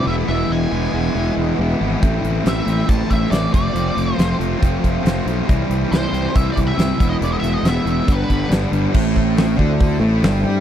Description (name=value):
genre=blues rock power trio and southern rock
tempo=139 BPM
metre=4/4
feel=straight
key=A minor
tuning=A4 = 440 Hz
part: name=octave-fuzz lead guitar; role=melody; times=0.0-8.5 s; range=B4 to A5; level=-26 LUFS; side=right 1 dB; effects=wah, distortion, tape echo
part: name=overdriven tonewheel organ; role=sustained chords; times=0.0-10.6 s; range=G3 to C#5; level=-31 LUFS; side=right 6 dB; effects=none
part: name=thick fuzz guitar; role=riff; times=0.0-10.6 s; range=G2 to G4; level=-20 LUFS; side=left 1 dB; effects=distortion
part: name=fuzz fingered electric bass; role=bass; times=0.1-10.6 s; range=E1 to G2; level=-21 LUFS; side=equal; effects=overdrive
part: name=huge arena drum kit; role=drums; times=2.0-10.3 s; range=crash cymbal, hi-hat, kick drum, snare drum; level=-19 LUFS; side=equal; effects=none
room=little or no reverb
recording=dry, close 1970s-style studio recording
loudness=-15 LUFS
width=side -10 dB against mid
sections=0.0-8.9 A section; 8.9-10.6 B section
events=none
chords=0.1 E; 2.0 Am; 3.5 F; 5.5 C; 7.0 E; 8.1 G; 8.9 Am